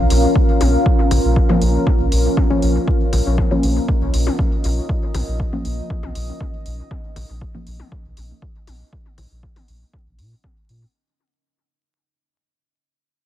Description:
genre	dub techno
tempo	119 BPM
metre	4/4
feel	straight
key	Bb minor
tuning	A4 = 439 Hz
part	deep dark ambient pad	sustained chords	0.0-10.9 s	Db4 to F5	-22 LUFS	equal	chorus, built-in reverb, sidechain pumping
part	deep mellow chord stab	stabs	0.0-10.9 s	F3 to Db4	-24 LUFS	left 1 dB	chorus, phaser, sidechain pumping, dub echo
part	soft dub sub bass	bass	0.0-10.8 s	Bb1 to Bb2	-19 LUFS	equal	sidechain pumping
part	electronic hi-hat	drums	0.1-10.8 s	none	-31 LUFS	left 1 dB	none
part	electronic kick drum	drums	0.4-10.5 s	none	-20 LUFS	equal	none
part	electronic toms and congas	percussion	0.6-10.5 s	none	-30 LUFS	left 5 dB	overdrive, sidechain pumping on perc, sidechain pumping on toms, dub echo
room	light reverb, digital ambience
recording	vinyl crackle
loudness	-15 LUFS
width	side -12 dB against mid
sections	0.0-10.9 A section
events	fade-out 0.0-10.9; filter sweep on sub bass 0.0-10.9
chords	0.0 Bbm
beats	0.35 | 0.86 1.36 1.87 2.37 | 2.88 3.38 3.88 4.39 | 4.89 5.40 5.90 6.41 | 6.91 7.41 7.92 8.42 | 8.93 9.43 9.94 10.44

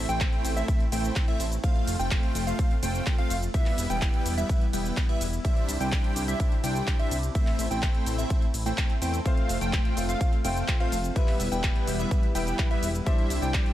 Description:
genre	EDM, festival progressive house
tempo	126 BPM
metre	4/4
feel	straight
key	A minor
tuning	A4 = 440 Hz
part	lush unison pad	sustained chords	0.0-13.7 s	C3 to G4	-38 LUFS	right 1 dB	chorus, phaser, sidechain pumping
part	plucky unison lead	arpeggios	0.0-13.7 s	E5 to G5	-34 LUFS	equal	vintage 12-bit sampler grit, sidechain pumping, tape echo
part	dense compressed supersaw	riff	0.0-13.7 s	G3 to G5	-32 LUFS	equal	sidechain pumping, tape echo
part	fat analog bass	bass	0.0-13.6 s	E1 to E2	-30 LUFS	equal	sidechain pumping
part	big-room dance drum kit	drums	0.1-13.7 s	handclaps, hi-hat, ride cymbal, shaker	-34 LUFS	equal	none
part	electronic kick drum	drums	0.2-13.6 s	none	-25 LUFS	equal	none
part	clear grand piano	accompaniment	9.2-13.7 s	G3 to F5	-35 LUFS	left 4 dB	sidechain pumping, tape echo
room	little or no reverb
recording	none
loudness	-24 LUFS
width	side -13 dB against mid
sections	0.0-13.7 A section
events	none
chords	0.0 Am; 1.6 F; 3.5 Em; 5.4 Cadd9; 7.4 Am; 9.3 F; 11.2 Em; 13.1 Cadd9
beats	0.21 0.68 1.16 | 1.64 2.11 2.59 3.06 | 3.54 4.02 4.49 4.97 | 5.45 5.92 6.40 6.88 | 7.35 7.83 8.30 8.78 | 9.26 9.73 10.21 10.68 | 11.16 11.64 12.11 12.59 | 13.06 13.54

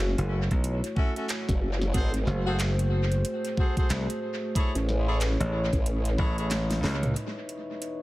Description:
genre	glitch hop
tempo	92 BPM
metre	4/4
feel	swing 60% on 16ths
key	C# minor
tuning	A4 = 440 Hz
part	dark analog pad	sustained chords	0.0-8.0 s	E3 to D#5	-34 LUFS	equal	lush chorus, sidechain pumping
part	formant-sweep wobble bass	bass	0.0-6.2 s	F#1 to A1	-26 LUFS	equal	chorus, overdrive
part	slap bass	bass	0.2-7.1 s	F#1 to C#2	-26 LUFS	equal	none
part	dubstep drum kit	drums	0.2-8.0 s	handclaps, hi-hat, snare drum, toms	-35 LUFS	right 1 dB	tape echo
part	electronic kick drum	drums	0.5-6.3 s	none	-25 LUFS	equal	none
part	bright horn section	stabs	1.0-8.0 s	C#4 to C#5	-36 LUFS	left 1 dB	sidechain pumping, low-pass filter, tape echo
room	light reverb, digital ambience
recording	echo-heavy mix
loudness	-25 LUFS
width	side -18 dB against mid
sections	0.0-7.2 A section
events	kick drops out 6.5-7.2; drum fill 6.5-7.2; band accent 6.8-7.2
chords	0.0 F#m7; 1.9 G#7b9; 4.6 Amaj7; 7.2 C#m9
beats	0.64 1.29 | 1.94 2.60 3.25 3.90 | 4.55 5.20 5.86 6.51 | 7.16 7.81

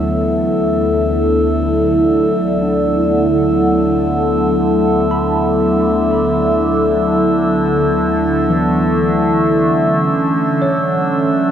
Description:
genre	ambient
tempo	free time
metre	none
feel	none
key	D major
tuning	A4 = 439 Hz
part	warbly tape-like pad	sustained chords	0.0-11.5 s	D2 to A4	-15 LUFS	equal	chorus, built-in reverb, shimmer reverb
part	tine electric piano	arpeggios	0.0-11.5 s	E3 to B5	-24 LUFS	equal	medium tremolo, tape echo, shimmer reverb
part	overtone-sweeping drone	drone	0.0-11.5 s	D3 to A3	-18 LUFS	right 1 dB	chorus, built-in reverb, phaser
part	glass harmonica	texture	0.0-11.5 s	E5 to E6	-24 LUFS	equal	shimmer reverb
room	wet spring reverb, RT60 3.0 s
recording	echo-heavy mix, cassette tape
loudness	-12 LUFS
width	side -9 dB against mid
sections	0.0-11.5 A section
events	fade-in on tine electric piano 0.0-11.5; fade-in on glass harmonica 0.0-11.5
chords	0.0 Dmaj9; 9.7 C#m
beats	free time

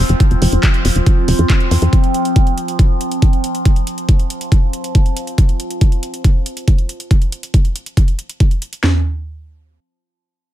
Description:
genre	psychedelic trance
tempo	139 BPM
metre	4/4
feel	straight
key	unclear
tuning	A4 = 440 Hz
part	overtone-sweeping drone	sustained chords	0.0-5.4 s	F3 to C4	-21 LUFS	right 1 dB	chorus, built-in reverb, phaser, sidechain pumping
part	tight sequencer bass	bass	0.0-1.9 s	F1 to F2	-13 LUFS	equal	none
part	drum and bass drum kit	drums	0.1-8.8 s	handclaps, hi-hat	-25 LUFS	equal	overdrive
part	drum and bass drum kit	drums	0.2-8.9 s	kick drum, snare drum, toms	-12 LUFS	equal	overdrive
room	light reverb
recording	none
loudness	-13 LUFS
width	side -13 dB against mid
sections	0.0-8.8 A section; 8.8-10.5 B section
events	none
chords	0.0 F5; 8.8 N.C.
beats	| 0.20 0.63 1.06 1.50 | 1.93 2.36 2.79 3.22 | 3.65 4.09 4.52 4.95 | 5.38 5.81 6.25 6.68 | 7.11 7.54 7.97 8.40 | 8.83

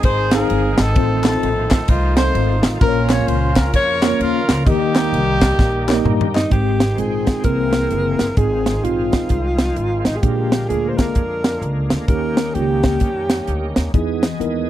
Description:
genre	uptempo gospel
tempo	129 BPM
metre	4/4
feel	swing 62% on 8ths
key	Ab major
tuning	A4 = 440 Hz
part	clear horn section	melody	0.0-6.3 s	Bb3 to Db5	-20 LUFS	equal	none
part	bright tonewheel organ	sustained chords	0.0-14.7 s	Db3 to G5	-28 LUFS	right 2 dB	slow rotary speaker, overdrive, chorus vibrato
part	upright bass	bass	0.0-14.7 s	Gb1 to G2	-22 LUFS	equal	none
part	crisp fusion drum kit	drums	0.0-14.5 s	hi-hat, kick drum, ride cymbal, snare drum, toms	-17 LUFS	equal	none
part	mellow tine electric piano	accompaniment	0.3-14.7 s	Ab2 to Bb5	-21 LUFS	left 1 dB	slow stereo tremolo
part	group handclap	percussion	0.3-6.4 s	none	-29 LUFS	left 5 dB	none
part	breathy alto saxophone	melody	6.4-13.8 s	Eb4 to C5	-22 LUFS	equal	none
part	clear French horn section	sustained chords	6.5-14.7 s	B2 to D#5	-32 LUFS	left 2 dB	none
room	little or no reverb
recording	dry, close 1970s-style studio recording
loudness	-15 LUFS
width	side -12 dB against mid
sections	0.0-6.5 A section; 6.5-14.7 B section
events	drum fill 5.6-6.5; tine electric piano fill 5.8-6.5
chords	0.0 Ab; 1.0 F7/A; 2.8 Bbm; 4.7 Eb; 6.5 Abmaj7; 7.4 C7b13; 8.4 Fm7/Ab; 10.2 Bb7; 12.1 Eb7; 13.9 Emaj7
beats	0.04 0.50 | 0.97 1.43 1.89 2.35 | 2.82 3.28 3.74 4.20 | 4.67 5.13 5.59 6.06 | 6.52 6.98 7.45 7.91 | 8.37 8.84 9.30 9.77 | 10.23 10.69 11.16 11.62 | 12.09 12.55 13.01 13.48 | 13.94 14.40

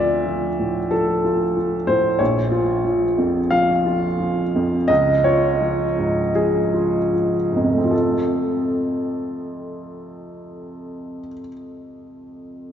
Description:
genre	neoclassical minimalist piano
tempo	72-95 BPM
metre	4/4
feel	rubato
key	F major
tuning	A4 = 441 Hz
part	warm upright piano	solo	0.0-12.7 s	Bb1 to F5	-18 LUFS	equal	none
room	wet church reverb, RT60 3.1 s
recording	recorded in a church or concert hall, nothing above 7.8 kHz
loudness	-17 LUFS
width	side -9 dB against mid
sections	0.0-7.9 A section; 7.9-11.1 B section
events	slowing down 0.9-7.9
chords	0.0 Dm; 2.2 Bbm; 4.9 Db; 7.9 F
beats	0.26 0.91 1.56 | 2.20 2.85 3.51 4.20 | 4.89 5.61 6.34 7.12 | 7.92 8.70 9.50 10.29

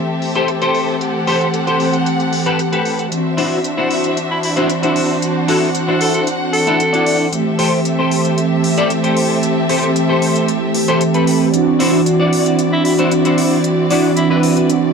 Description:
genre	nu-disco, nu disco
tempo	114 BPM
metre	4/4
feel	straight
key	D mixolydian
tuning	A4 = 440 Hz
part	mellow synth brass	accompaniment	0.0-14.9 s	E3 to G4	-16 LUFS	right 2 dB	chorus, tape echo
part	warm symphonic violin section	sustained chords	0.0-14.9 s	C4 to F#5	-22 LUFS	equal	none
part	electronic hi-hat	drums	0.2-14.8 s	none	-25 LUFS	left 1 dB	low-pass filter on hats, studio reverb
part	clean electric guitar	riff	0.4-14.7 s	D4 to D5	-18 LUFS	left 2 dB	ensemble chorus, tape echo
part	raspy tenor saxophone	melody	4.3-7.3, 12.7-14.4 s	E4 to A4	-21 LUFS	equal	ping-pong delay
room	light reverb, small room ambience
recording	none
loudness	-13 LUFS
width	side -5 dB against mid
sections	0.0-14.9 A section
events	filter sweep on analog polysynth 0.0-14.9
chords	0.0 Am7; 3.1 D9; 7.3 Am7; 11.5 D9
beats	0.48 | 1.01 1.54 2.06 2.59 | 3.12 3.64 4.17 4.70 | 5.22 5.75 6.28 6.80 | 7.33 7.85 8.38 8.91 | 9.43 9.96 10.48 11.01 | 11.54 12.06 12.59 13.12 | 13.64 14.17 14.70

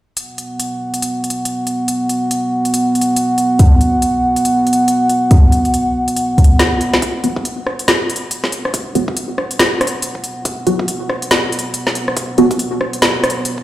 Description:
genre	deep dubstep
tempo	140 BPM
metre	4/4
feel	swing 59% on 16ths, half-time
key	unclear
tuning	A4 = 440 Hz
part	dark analog pad	sustained chords	0.2-13.6 s	B3 to F#5	-18 LUFS	right 1 dB	chorus
part	deep house drum kit	drums	0.2-13.6 s	hi-hat, rim click, snare drum	-17 LUFS	equal	none
part	electronic kick drum	drums	3.6-13.6 s	none	-12 LUFS	equal	high-pass filter on kick
part	filtered dub chord stab	stabs	7.2-12.5 s	F#3 to F#4	-16 LUFS	right 1 dB	phaser, lush chorus, cassette tape, dub echo
room	moderate spring reverb, RT60 1.9 s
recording	played on a big sound system in a bare room, large studio reverb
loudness	-13 LUFS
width	side -14 dB against mid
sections	0.2-7.0 A section; 7.0-13.6 B section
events	drum fill 6.6-7.0; build-up 7.0-13.6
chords	0.2 B5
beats	| 0.17 0.59 1.02 1.45 | 1.88 2.31 2.74 3.17 | 3.60 4.02 4.45 4.88 | 5.31 5.74 6.17 6.59 | 7.02 7.45 7.88 8.31 | 8.74 9.17 9.60 10.02 | 10.45 10.88 11.31 11.74 | 12.17 12.60 13.02 13.45

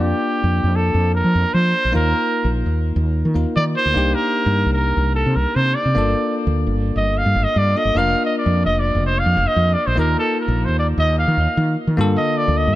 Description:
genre	progressive instrumental, band music in an uneven meter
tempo	150 BPM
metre	5/4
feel	straight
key	unclear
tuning	A4 = 444 Hz
part	warm trumpet	melody	0.0-12.7 s	G4 to F5	-20 LUFS	right 1 dB	ping-pong delay
part	bell-like tine electric piano	accompaniment	0.0-12.8 s	D3 to D5	-24 LUFS	left 2 dB	none
part	woody fretless electric bass	bass	0.0-12.8 s	F1 to F3	-18 LUFS	equal	none
room	light reverb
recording	none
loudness	-16 LUFS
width	side -15 dB against mid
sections	0.0-12.8 A section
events	trumpet solo 0.0-12.8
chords	0.0 Bb/F; 1.9 Ebsus2; 4.0 Cm7; 6.0 Gm7; 8.0 Bb/F; 10.0 Ebsus2; 12.0 Gm7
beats	0.34 0.75 1.15 1.55 | 1.95 2.35 2.75 3.15 3.56 | 3.96 4.36 4.76 5.16 5.56 | 5.96 6.36 6.76 7.17 7.57 | 7.97 8.37 8.77 9.17 9.57 | 9.97 10.37 10.77 11.18 11.58 | 11.98 12.38

